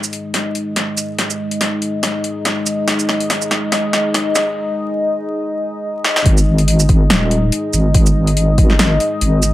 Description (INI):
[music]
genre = deep dubstep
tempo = 142 BPM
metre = 4/4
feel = swing 55% on 16ths, half-time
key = unclear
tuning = A4 = 440 Hz
[part]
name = dark analog pad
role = sustained chords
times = 0.0-9.5 s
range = G#3 to D#5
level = -19 LUFS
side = left 1 dB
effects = chorus
[part]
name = deep house drum kit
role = drums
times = 0.0-9.5 s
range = hi-hat, shaker, snare drum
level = -18 LUFS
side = equal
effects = overdrive, high-pass filter on hats, high-pass filter on snare, high-pass filter on perc, high-pass filter on room
[part]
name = deep soft wobble bass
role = bass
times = 6.3-9.5 s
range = D#1 to G#1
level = -14 LUFS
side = equal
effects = chorus, tube saturation
[part]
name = electronic kick drum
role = drums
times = 6.3-8.7 s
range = none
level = -13 LUFS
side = equal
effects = overdrive
[sound]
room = moderate spring reverb, RT60 1.3 s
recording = vinyl crackle, high-pass filter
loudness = -14 LUFS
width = side -15 dB against mid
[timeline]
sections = 0.0-6.3 A section; 6.3-9.5 B section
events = build-up 0.0-6.3; drum fill 0.0-4.6, 6.0; break 4.6-6.3; drop 6.3-9.5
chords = 0.0 G#5